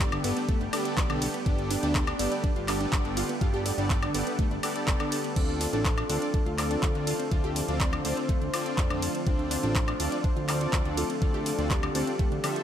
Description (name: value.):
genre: progressive house.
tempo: 123 BPM.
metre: 4/4.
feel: straight.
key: D dorian.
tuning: A4 = 440 Hz.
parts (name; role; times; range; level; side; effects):
lush unison pad; sustained chords; 0.0-12.6 s; D3 to G4; -36 LUFS; right 1 dB; chorus, sidechain pumping.
wide unison pluck; arpeggios; 0.0-12.6 s; D3 to D6; -34 LUFS; right 2 dB; sidechain pumping, tape echo.
soft supersaw; stabs; 0.0-12.6 s; B3 to E5; -33 LUFS; left 1 dB; sidechain pumping, tape echo.
fat analog bass; bass; 0.0-12.4 s; F1 to F2; -33 LUFS; equal; sidechain pumping.
electronic kick drum; drums; 0.0-12.3 s; none; -27 LUFS; equal; overdrive.
pop drum kit; drums; 0.0-12.6 s; crash cymbal, handclaps, hi-hat, ride cymbal, woodblock; -33 LUFS; equal; overdrive.
soft octave-layered synth lead; melody; 5.4-12.6 s; G4 to C5; -35 LUFS; left 2 dB; chorus, sidechain pumping, digital delay.
room: light reverb.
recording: none.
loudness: -25 LUFS.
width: side -10 dB against mid.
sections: 0.0-12.6 A section.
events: none.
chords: 0.0 Gadd9; 5.4 Dm7.